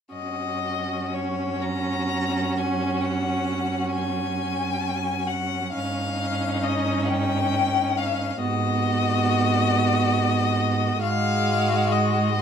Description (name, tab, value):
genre	classical, slow romantic movement for string quartet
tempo	39-46 BPM (dotted quarters)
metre	12/8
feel	rubato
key	unclear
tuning	A4 = 442 Hz
part	clear violin	melody	0.1-12.4 s	C#5 to A#5	-26 LUFS	left 8 dB	none
part	warm violin	second line	0.1-12.4 s	D#4 to F#4	-30 LUFS	equal	none
part	rich viola	accompaniment	0.1-12.4 s	G#3 to C#4	-27 LUFS	right 2 dB	none
part	clear cello	bass	0.1-12.4 s	F#2 to G#2	-28 LUFS	right 4 dB	none
room	moderate large studio reverb, RT60 0.8 s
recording	minimal, uncompressed stereo recording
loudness	-21 LUFS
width	side -8 dB against mid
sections	0.1-12.4 A section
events	none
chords	0.1 F#5; 5.7 D#7/G; 8.4 G#m7; 11.0 G#7(no3)